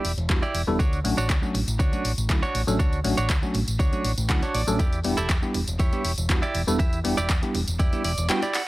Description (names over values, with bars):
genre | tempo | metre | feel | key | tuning
filtered disco house | 120 BPM | 4/4 | straight | D major | A4 = 440 Hz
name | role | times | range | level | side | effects
bell-like tine electric piano | accompaniment | 0.0-8.4 s | F#3 to A4 | -27 LUFS | equal | fast stereo tremolo, phaser, sidechain pumping, low-pass filter
direct-recorded clean electric guitar | riff | 0.0-8.7 s | D4 to G5 | -29 LUFS | right 3 dB | sidechain pumping, low-pass filter
fingered electric bass | bass | 0.0-8.3 s | E1 to E2 | -27 LUFS | equal | sidechain pumping, low-pass filter
house drum kit | drums | 0.0-8.7 s | handclaps, hi-hat, tambourine | -30 LUFS | equal | sidechain pumping on hats, sidechain pumping on perc
tambourine | percussion | 0.1-8.7 s | none | -43 LUFS | equal | none
electronic kick drum | drums | 0.3-7.9 s | none | -24 LUFS | equal | none
room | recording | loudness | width
digital ambience | dry, gritty hardware recording | -21 LUFS | side -18 dB against mid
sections
0.0-8.7 A section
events
clean electric guitar fill 4.0-4.8, 7.8-8.7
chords
0.0 Em7; 0.8 Dmaj7; 4.8 Em7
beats
0.30 | 0.80 1.30 1.80 2.30 | 2.80 3.30 3.80 4.30 | 4.80 5.30 5.80 6.30 | 6.80 7.30 7.80 8.30